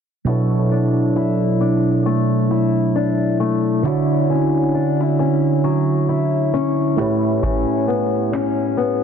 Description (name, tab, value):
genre	contemporary R&B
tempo	67 BPM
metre	4/4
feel	swing 58% on 16ths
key	B minor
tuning	A4 = 438 Hz
part	FM electric piano	accompaniment	0.2-9.0 s	B2 to C#5	-18 LUFS	right 4 dB	chorus
part	fingerpicked old ladder-braced acoustic guitar	arpeggios	0.3-9.0 s	A2 to E4	-20 LUFS	left 7 dB	tape echo
part	booming analog drum machine	drums	7.4-8.6 s	handclaps, kick drum	-25 LUFS	right 1 dB	overdrive
room	moderate lush hall reverb, RT60 2.2 s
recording	dense, heavily limited modern master, low-pass filter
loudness	-16 LUFS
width	side -7 dB against mid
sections	0.3-9.0 A section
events	filter sweep 0.3-9.0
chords	0.3 Bm11; 3.8 Dmaj9; 7.0 A9